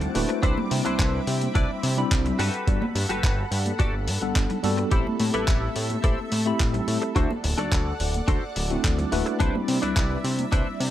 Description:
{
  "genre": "nu-disco, nu disco",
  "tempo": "107 BPM",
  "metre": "4/4",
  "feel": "straight",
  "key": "unclear",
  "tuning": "A4 = 440 Hz",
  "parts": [
    { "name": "tine electric piano", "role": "accompaniment", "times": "0.0-10.9 s", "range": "G3 to B5", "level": "-28 LUFS", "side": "left 1 dB", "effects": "medium stereo tremolo, sidechain pumping, digital delay" },
    { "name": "lush unison pad", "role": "sustained chords", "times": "0.0-10.9 s", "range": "C4 to D6", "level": "-34 LUFS", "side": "equal", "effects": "chorus, phaser, sidechain pumping" },
    { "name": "direct-recorded clean electric guitar", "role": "riff", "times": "0.0-10.8 s", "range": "D4 to D5", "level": "-30 LUFS", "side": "left 1 dB", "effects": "analog chorus, digital delay" },
    { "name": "fat analog bass", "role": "bass", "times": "0.0-10.9 s", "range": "D1 to C3", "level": "-27 LUFS", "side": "equal", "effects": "tube saturation" },
    { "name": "dusty soul sampler-style drum kit", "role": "drums", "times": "0.0-10.9 s", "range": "handclaps, hi-hat", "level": "-31 LUFS", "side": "left 1 dB", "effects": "none" },
    { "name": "congas", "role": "percussion", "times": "0.0-10.5 s", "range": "none", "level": "-34 LUFS", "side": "right 2 dB", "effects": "none" },
    { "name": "electronic kick drum", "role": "drums", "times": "0.4-10.6 s", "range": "none", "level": "-23 LUFS", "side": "equal", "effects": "none" }
  ],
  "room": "little or no reverb",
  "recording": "none",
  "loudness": "-22 LUFS",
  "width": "side -12 dB against mid",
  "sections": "0.0-10.9 A section",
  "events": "none",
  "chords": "0.4 Cmaj9; 2.4 Gmaj9; 4.9 Am7; 7.2 D7; 9.4 Cmaj9"
}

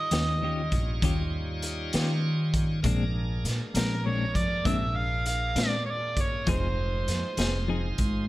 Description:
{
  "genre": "slow blues",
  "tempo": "66 BPM (dotted quarters)",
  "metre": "12/8",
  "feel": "straight",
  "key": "Bb mixolydian",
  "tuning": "A4 = 440 Hz",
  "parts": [
    { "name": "overdriven harmonica", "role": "melody", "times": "0.0-7.7 s", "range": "Bb4 to F5", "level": "-32 LUFS", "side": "right 2 dB", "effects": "tape echo" },
    { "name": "bright tonewheel organ", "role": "sustained chords", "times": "0.0-8.3 s", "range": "G3 to Db5", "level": "-38 LUFS", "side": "equal", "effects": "slow rotary speaker, overdrive" },
    { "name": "clean electric guitar", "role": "accompaniment", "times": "0.1-7.9 s", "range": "Bb2 to Ab4", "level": "-32 LUFS", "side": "left 4 dB", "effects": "tremolo" },
    { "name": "upright bass", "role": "bass", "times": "0.1-8.3 s", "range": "F1 to Eb3", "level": "-29 LUFS", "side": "equal", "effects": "none" },
    { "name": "raw garage drum kit", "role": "drums", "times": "0.1-8.1 s", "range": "hi-hat, kick drum, snare drum", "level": "-30 LUFS", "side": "equal", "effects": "none" }
  ],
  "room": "light reverb",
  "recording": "none",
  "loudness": "-25 LUFS",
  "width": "side -17 dB against mid",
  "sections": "0.0-8.3 A section",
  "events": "none",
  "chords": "0.0 Eb9; 2.8 Bb9; 6.5 Fm7"
}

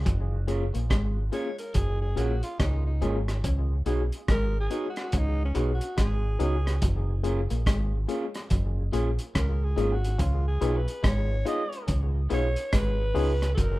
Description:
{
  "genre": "lovers rock reggae",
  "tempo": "71 BPM",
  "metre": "4/4",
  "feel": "swing 62% on 16ths",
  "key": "F# major",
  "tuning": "A4 = 437 Hz",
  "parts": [
    { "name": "deep dub fingered electric bass", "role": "bass", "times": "0.0-13.8 s", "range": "F#1 to C#2", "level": "-26 LUFS", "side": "equal", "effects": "none" },
    { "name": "electric guitar through a small old amp", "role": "riff", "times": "0.1-13.7 s", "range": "F#3 to C#4", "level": "-38 LUFS", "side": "left 4 dB", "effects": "dub echo" },
    { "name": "crunchy breakbeat drum kit", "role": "drums", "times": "0.1-13.8 s", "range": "hi-hat, kick drum, rim click", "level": "-30 LUFS", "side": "equal", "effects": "none" },
    { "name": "tine electric piano", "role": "accompaniment", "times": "0.5-13.3 s", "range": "A#3 to G#4", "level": "-33 LUFS", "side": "left 2 dB", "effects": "overdrive, medium stereo tremolo, dub echo" },
    { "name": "electric guitar through a small old amp", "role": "stabs", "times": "0.5-13.3 s", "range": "E#4 to C#5", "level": "-39 LUFS", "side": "right 5 dB", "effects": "none" },
    { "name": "raspy alto saxophone", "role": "melody", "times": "1.3-13.8 s", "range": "C#4 to D#5", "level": "-34 LUFS", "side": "equal", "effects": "tape echo" },
    { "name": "clear horn section", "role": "second line", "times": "13.6-13.8 s", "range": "A#2 to D#4", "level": "-54 LUFS", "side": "equal", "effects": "none" }
  ],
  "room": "light reverb",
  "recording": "rough home demo mix",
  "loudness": "-24 LUFS",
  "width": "side -18 dB against mid",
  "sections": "0.1-13.6 A section",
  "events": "alto saxophone solo 0.1-13.6",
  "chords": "0.1 F#maj7; 3.4 C#7sus4; 6.8 F#maj7; 10.2 C#7"
}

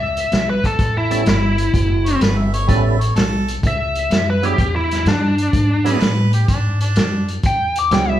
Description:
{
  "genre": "electric blues shuffle",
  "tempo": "126 BPM",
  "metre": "4/4",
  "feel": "swing 68% on 8ths",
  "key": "unclear",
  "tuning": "A4 = 440 Hz",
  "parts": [
    { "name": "biting lead guitar", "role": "melody", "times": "0.0-8.2 s", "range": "D4 to D6", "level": "-19 LUFS", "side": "left 1 dB", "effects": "overdrive" },
    { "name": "upright bass", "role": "bass", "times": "0.0-8.2 s", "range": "F#1 to A2", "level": "-20 LUFS", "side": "equal", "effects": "none" },
    { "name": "vintage drum kit", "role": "drums", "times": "0.2-8.1 s", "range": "hi-hat, kick drum, snare drum", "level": "-19 LUFS", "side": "equal", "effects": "none" },
    { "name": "percussive tonewheel organ", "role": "accompaniment", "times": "1.1-8.2 s", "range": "F#3 to A4", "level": "-23 LUFS", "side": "right 5 dB", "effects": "slow rotary speaker, overdrive, chorus vibrato" },
    { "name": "bright harmonica", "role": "second line", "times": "2.1-7.3 s", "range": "D4 to E5", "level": "-26 LUFS", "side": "right 2 dB", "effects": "overdrive" }
  ],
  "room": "moderate large studio reverb, RT60 1.3 s",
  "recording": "band playing live in one room",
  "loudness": "-15 LUFS",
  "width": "side -12 dB against mid",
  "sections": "0.0-8.2 A section",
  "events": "none",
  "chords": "0.0 E5; 0.8 A7; 4.6 E7"
}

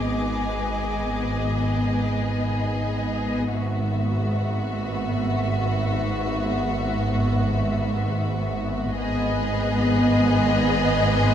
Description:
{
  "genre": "cinematic, suspense film score",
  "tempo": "free time",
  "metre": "none",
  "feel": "none",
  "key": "G# minor",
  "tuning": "A4 = 440 Hz",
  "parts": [
    { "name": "dark studio violin section", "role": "melody", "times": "0.0-11.3 s", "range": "D#5 to E5", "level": "-30 LUFS", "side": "left 2 dB", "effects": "none" },
    { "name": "bright studio violin section", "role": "second line", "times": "0.0-11.3 s", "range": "F#4 to G#4", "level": "-30 LUFS", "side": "left 1 dB", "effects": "none" },
    { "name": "warm studio viola section", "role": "accompaniment", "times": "0.0-11.3 s", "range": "B3", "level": "-27 LUFS", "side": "left 1 dB", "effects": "none" },
    { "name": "warm studio cello section", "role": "bass", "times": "0.0-11.3 s", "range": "G#2", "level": "-29 LUFS", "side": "right 1 dB", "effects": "none" },
    { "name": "warm studio double bass section", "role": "bass", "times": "0.0-11.3 s", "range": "G#1", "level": "-28 LUFS", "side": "right 2 dB", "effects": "none" },
    { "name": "analog drone", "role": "drone", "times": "0.0-11.3 s", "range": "G#1", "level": "-29 LUFS", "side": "equal", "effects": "chorus" },
    { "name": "rich studio violin section", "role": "texture", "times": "0.0-3.0, 8.9-11.3 s", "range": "G#5 to F#6", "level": "-36 LUFS", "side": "left 3 dB", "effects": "none" }
  ],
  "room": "wet scoring stage reverb, RT60 1.7 s",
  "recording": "none",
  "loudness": "-21 LUFS",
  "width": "side -9 dB against mid",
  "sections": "0.0-11.3 A section",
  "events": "none",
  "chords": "0.0 G#m"
}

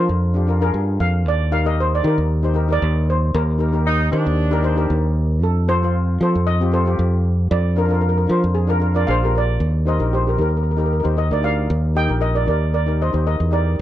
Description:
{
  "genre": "calypso",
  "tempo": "115 BPM",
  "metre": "4/4",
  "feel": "straight",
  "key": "Eb major",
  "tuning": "A4 = 441 Hz",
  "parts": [
    { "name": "steel pan", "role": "melody", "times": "0.0-13.8 s", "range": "G4 to G5", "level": "-23 LUFS", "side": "right 1 dB", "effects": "none" },
    { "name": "steel pan", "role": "accompaniment", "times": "0.0-13.8 s", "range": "Eb3 to C5", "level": "-26 LUFS", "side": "left 4 dB", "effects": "none" },
    { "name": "fingered electric bass", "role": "bass", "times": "0.0-13.8 s", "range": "Bb1 to F3", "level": "-18 LUFS", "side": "equal", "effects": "none" },
    { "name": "dark horn section", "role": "second line", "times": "3.9-5.1 s", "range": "D4 to Eb4", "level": "-23 LUFS", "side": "right 2 dB", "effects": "none" }
  ],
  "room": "little or no reverb",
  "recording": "dry, close 1970s-style studio recording",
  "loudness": "-16 LUFS",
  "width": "side -13 dB against mid",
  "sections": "0.0-9.6 A section; 9.6-13.8 B section",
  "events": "steel pan solo 0.0-9.6",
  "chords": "0.0 Bb7/F; 1.3 Ebmaj7; 5.4 F; 7.5 Bb/F; 9.6 Ebmaj7"
}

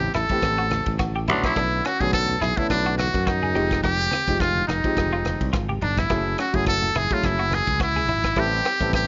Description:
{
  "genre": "electric jazz fusion",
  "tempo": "106 BPM",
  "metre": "4/4",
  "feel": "swing 55% on 16ths",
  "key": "unclear",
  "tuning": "A4 = 441 Hz",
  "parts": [
    { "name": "trumpet with metal mute", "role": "melody", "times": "0.0-9.1 s", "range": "D4 to A4", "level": "-26 LUFS", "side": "equal", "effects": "none" },
    { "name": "warm concert grand piano", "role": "accompaniment", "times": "0.0-9.1 s", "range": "D3 to A4", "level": "-31 LUFS", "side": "equal", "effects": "none" },
    { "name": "modern bright fingered electric bass", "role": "bass", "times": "0.0-9.1 s", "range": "F1 to F#2", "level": "-29 LUFS", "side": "equal", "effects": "none" },
    { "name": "congas", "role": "percussion", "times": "0.0-8.2 s", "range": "none", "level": "-36 LUFS", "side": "equal", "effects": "none" },
    { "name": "clean electric guitar", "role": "stabs", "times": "0.1-8.9 s", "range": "C4 to G#4", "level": "-34 LUFS", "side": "equal", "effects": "analog chorus" },
    { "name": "crisp fusion drum kit", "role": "drums", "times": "0.1-9.1 s", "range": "kick drum, ride cymbal, rim click", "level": "-31 LUFS", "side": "equal", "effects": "none" }
  ],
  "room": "light reverb",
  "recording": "nothing above 7.5 kHz",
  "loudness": "-22 LUFS",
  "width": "mono",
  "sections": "0.0-9.1 A section",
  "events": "drum fill 5.7-6.1",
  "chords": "0.0 Am9; 1.3 Bm9; 3.6 Fm9; 6.1 F#m9; 8.4 Am9"
}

